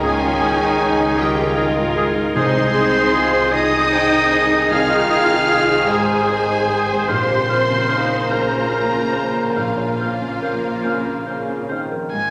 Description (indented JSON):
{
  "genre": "cinematic",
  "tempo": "46-53 BPM (dotted quarters)",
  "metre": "6/8",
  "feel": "rubato",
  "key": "unclear",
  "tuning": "A4 = 440 Hz",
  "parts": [
    { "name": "warm symphonic violin section", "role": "melody", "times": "0.0-12.3 s", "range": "C5 to F6", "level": "-27 LUFS", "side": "equal", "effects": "none" },
    { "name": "bright small flute group", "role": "second line", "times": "0.0-11.8 s", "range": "Eb6 to F6", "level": "-32 LUFS", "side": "equal", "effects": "none" },
    { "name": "clear clarinet", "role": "second line", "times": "0.0-11.7 s", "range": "F4 to F5", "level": "-25 LUFS", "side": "equal", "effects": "none" },
    { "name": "warm oboe", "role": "second line", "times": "0.0-11.8 s", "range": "Ab4 to C5", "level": "-31 LUFS", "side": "equal", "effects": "none" },
    { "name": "warm symphonic violin section", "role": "second line", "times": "0.0-12.3 s", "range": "F4 to F5", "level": "-31 LUFS", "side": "equal", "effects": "none" },
    { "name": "felt-muted upright piano", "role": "accompaniment", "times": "0.0-12.3 s", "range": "Bb1 to Eb5", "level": "-28 LUFS", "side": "equal", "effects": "none" },
    { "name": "rich symphonic viola section", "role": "accompaniment", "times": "0.0-12.3 s", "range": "Bb3 to G5", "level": "-24 LUFS", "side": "equal", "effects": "none" },
    { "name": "warm French horn section", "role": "sustained chords", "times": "0.0-12.1 s", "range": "Db3 to Bb4", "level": "-26 LUFS", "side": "equal", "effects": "none" },
    { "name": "concert harp", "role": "arpeggios", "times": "0.0-12.3 s", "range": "Ab2 to Eb6", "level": "-33 LUFS", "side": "equal", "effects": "none" },
    { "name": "rich symphonic double bass section", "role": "bass", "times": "0.0-12.3 s", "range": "Ab1 to Db2", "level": "-33 LUFS", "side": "equal", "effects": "none" },
    { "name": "warm symphonic cello section", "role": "bass", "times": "0.0-12.3 s", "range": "Ab2 to F4", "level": "-29 LUFS", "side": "equal", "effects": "none" },
    { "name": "timpani", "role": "percussion", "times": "2.4-3.5 s", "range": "C3", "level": "-28 LUFS", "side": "equal", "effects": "none" },
    { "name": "rich violin", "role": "melody", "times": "12.1-12.3 s", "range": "Ab5", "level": "-22 LUFS", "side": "equal", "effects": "none" }
  ],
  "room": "wet concert hall reverb, RT60 2.0 s",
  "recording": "none",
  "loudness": "-18 LUFS",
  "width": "mono",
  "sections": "0.0-12.1 A section",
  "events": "none",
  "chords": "0.0 Dbsus2; 2.4 Ab/C; 7.1 Bbmadd9"
}